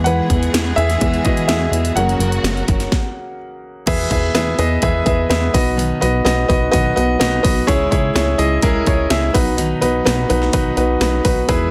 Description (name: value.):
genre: piano-driven pop.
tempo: 126 BPM.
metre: 4/4.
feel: straight.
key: B major.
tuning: A4 = 440 Hz.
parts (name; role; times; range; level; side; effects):
warm grand piano; accompaniment; 0.0-11.7 s; G#2 to F#5; -20 LUFS; equal; none.
warm studio string section; sustained chords; 0.0-2.9 s; C#3 to G#4; -29 LUFS; equal; none.
fingerpicked steel-string acoustic guitar; riff; 0.0-11.7 s; B2 to B4; -26 LUFS; equal; none.
plucky analog bass; bass; 0.0-11.7 s; F#1 to E3; -23 LUFS; equal; none.
house drum kit; drums; 0.1-11.6 s; crash cymbal, hi-hat, kick drum, snare drum; -22 LUFS; equal; none.
room: light reverb, studio reverb.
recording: dense, heavily limited modern master, faint mains hum.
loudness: -17 LUFS.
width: mono.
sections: 0.0-3.9 A section; 3.9-11.7 B section.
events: grand piano solo 0.0-3.9; stop 2.9-3.9.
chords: 0.0 E; 2.0 F#; 3.9 E; 5.5 B; 7.7 C#m; 9.3 B.